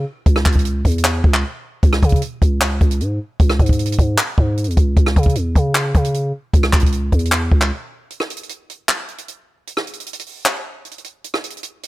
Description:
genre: hip hop, trap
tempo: 153 BPM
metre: 4/4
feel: half-time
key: C# minor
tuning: A4 = 440 Hz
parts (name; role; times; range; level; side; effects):
- growling 808-style bass; bass; 0.0-7.7 s; C#2 to C#3; -18 LUFS; equal; none
- compact cocktail drum kit; drums; 0.3-11.9 s; handclaps, hi-hat, kick drum, rim click; -16 LUFS; equal; none
room: little or no reverb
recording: none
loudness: -15 LUFS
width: side -18 dB against mid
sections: 0.0-8.1 A section; 8.1-11.9 B section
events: break 1.4-1.8, 7.7-8.1, 8.1-11.9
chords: none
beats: | 0.26 0.65 1.04 1.44 | 1.83 2.22 2.61 3.01 | 3.40 3.79 4.18 4.58 | 4.97 5.36 5.75 6.14 | 6.54 6.93 7.32 7.71 | 8.10 8.50 8.89 9.28 | 9.67 10.06 10.46 10.85 | 11.24 11.63

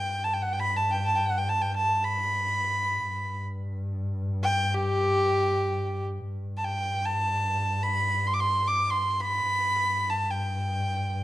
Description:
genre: Persian modal ensemble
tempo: free time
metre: none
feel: none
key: G dastgah mahur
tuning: A4 = 441 Hz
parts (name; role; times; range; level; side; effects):
- bright kamancheh; melody; 0.0-11.2 s; G4 to D6; -25 LUFS; equal; none
- dark double bass; drone; 0.0-11.2 s; G2; -31 LUFS; equal; none
room: moderate recital hall reverb, RT60 1.3 s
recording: dark, warm production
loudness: -24 LUFS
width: side -15 dB against mid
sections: 0.0-6.3 A section; 6.3-11.2 A section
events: none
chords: none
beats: free time

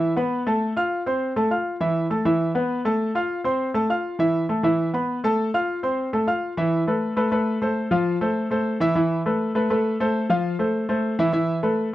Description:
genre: latin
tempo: 202 BPM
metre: 4/4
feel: straight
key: A minor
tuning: A4 = 440 Hz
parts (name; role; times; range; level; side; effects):
- clear concert grand piano; solo; 0.0-11.9 s; E3 to F6; -20 LUFS; equal; none
room: little or no reverb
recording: dry, close 1970s-style studio recording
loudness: -20 LUFS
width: side -14 dB against mid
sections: 0.0-6.6 A section; 6.6-11.9 B section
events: none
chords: 0.0 Asus2; 0.6 F/A; 1.8 Asus2; 3.0 F/A; 4.2 Asus2; 5.4 F/A; 6.6 Amadd9; 7.8 Fmaj7; 9.0 Asus2; 10.1 Fmaj7; 11.3 Asus2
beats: 0.02 0.32 | 0.62 0.92 1.21 1.51 | 1.81 2.11 2.40 2.70 | 3.00 3.30 3.60 3.89 | 4.19 4.49 4.79 5.09 | 5.38 5.68 5.98 6.28 | 6.58 6.87 7.17 7.47 | 7.77 8.06 8.36 8.66 | 8.96 9.26 9.55 9.85 | 10.15 10.44 10.74 11.04 | 11.34 11.63

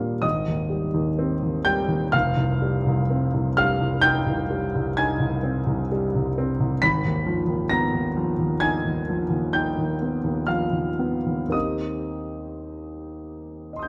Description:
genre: classical, impressionist solo piano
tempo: 53-68 BPM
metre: 5/4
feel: rubato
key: unclear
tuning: A4 = 441 Hz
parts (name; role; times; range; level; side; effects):
- warm concert grand piano; solo; 0.0-13.9 s; F1 to Cb7; -24 LUFS; equal; none
room: moderate scoring stage reverb, RT60 1.7 s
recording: close, detailed microphones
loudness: -24 LUFS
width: mono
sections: 0.0-13.9 A section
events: none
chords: 0.2 Abmaj7; 2.1 Fm9; 6.8 Abm6; 11.5 Eb6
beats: 0.24 1.19 | 2.14 3.10 4.05 4.98 5.92 | 6.81 7.71 8.63 9.56 10.52 | 11.54 12.62 13.74

